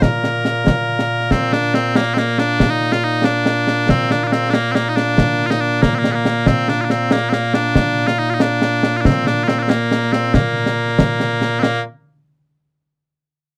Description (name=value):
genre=scottish traditional, Scottish pipe music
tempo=93 BPM (dotted quarters)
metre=6/8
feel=straight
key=Bb major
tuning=A4 = 441 Hz
part: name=loud bright bagpipes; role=melody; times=0.0-11.8 s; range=Bb2 to Bb4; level=-19 LUFS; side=equal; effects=none
part: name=concert snare drum and concert bass drum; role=drums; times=0.0-11.7 s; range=none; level=-20 LUFS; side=equal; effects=none
room=little or no reverb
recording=dry, close 1970s-style studio recording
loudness=-17 LUFS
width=mono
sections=0.0-1.3 A section; 1.3-11.6 B section; 11.6-12.9 C section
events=none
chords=none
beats=| 0.02 0.66 | 1.31 1.95 | 2.60 3.24 | 3.89 4.53 | 5.18 5.82 | 6.47 7.11 | 7.76 8.40 | 9.05 9.70 | 10.34 10.98 | 11.63